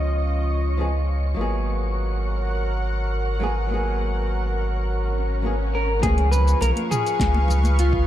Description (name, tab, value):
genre	sunset chillout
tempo	103 BPM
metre	4/4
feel	straight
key	unclear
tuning	A4 = 438 Hz
part	clean electric guitar	melody	0.0-1.0, 5.7-8.1 s	C#4 to B4	-26 LUFS	left 1 dB	spring reverb, tape echo, shimmer reverb
part	flamenco guitar	accompaniment	0.0-8.1 s	E#3 to G#4	-31 LUFS	moving between left 3 dB and right 3 dB	auto-pan, tape echo, shimmer reverb
part	lush unison pad	sustained chords	0.0-8.1 s	E#4 to C#6	-31 LUFS	right 1 dB	chorus, shimmer reverb
part	warm sub bass	bass	0.0-8.1 s	G#1 to C#2	-22 LUFS	equal	none
part	wind-like tuned noise texture	texture	0.0-8.1 s	C#5 to D#6	-36 LUFS	right 2 dB	built-in reverb, shimmer reverb
part	swell	sound effects	5.0-6.0 s	none	-34 LUFS	left 2 dB	none
part	deep house drum kit	drums	6.0-7.9 s	hi-hat, shaker, snare drum, toms	-29 LUFS	right 1 dB	overdrive, low-pass filter on hats, low-pass filter on perc, low-pass filter on toms, low-pass filter on snare
part	electronic kick drum	drums	6.0-8.0 s	none	-24 LUFS	equal	overdrive
part	congas	percussion	6.0-7.8 s	none	-31 LUFS	equal	none
room	light reverb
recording	dark, warm production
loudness	-20 LUFS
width	side -12 dB against mid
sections	0.0-6.0 A section; 6.0-8.1 B section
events	swell 5.0-6.0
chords	0.0 C#7; 1.4 G#m9; 6.0 C#7